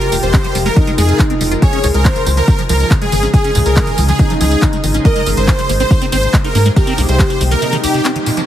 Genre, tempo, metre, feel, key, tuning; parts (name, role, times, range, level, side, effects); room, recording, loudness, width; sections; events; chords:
uplifting trance; 140 BPM; 4/4; straight; A4 = 437 Hz
supersaw chords; melody; 0.0-8.1 s; G4 to Eb5; -19 LUFS; right 1 dB; wide subtle chorus, sidechain pumping, ping-pong delay
warm velvety synth lead; second line; 0.0-8.4 s; Eb4 to C5; -20 LUFS; equal; chorus, digital delay
shimmering ambient pad; sustained chords; 0.0-8.5 s; C3 to Bb4; -22 LUFS; equal; chorus, built-in reverb, sidechain pumping
liquid acid bass; arpeggios; 0.0-8.4 s; C2 to F4; -21 LUFS; left 1 dB; phaser, sidechain pumping, digital delay
techno drum kit; drums; 0.0-8.5 s; handclaps, hi-hat, tambourine; -22 LUFS; equal
tight sequencer bass; bass; 0.1-7.6 s; F1 to Ab2; -15 LUFS; equal; sidechain pumping
electronic kick drum; drums; 0.3-7.3 s; -14 LUFS; equal
little or no reverb; heavily compressed radio sound; -11 LUFS; side -11 dB against mid
0.0-8.5 A section
drop 0.0-8.5; break 7.6-8.5; band accent 8.1
0.0 Fm; 1.6 Dbadd9; 5.0 Abadd9; 6.8 Csus4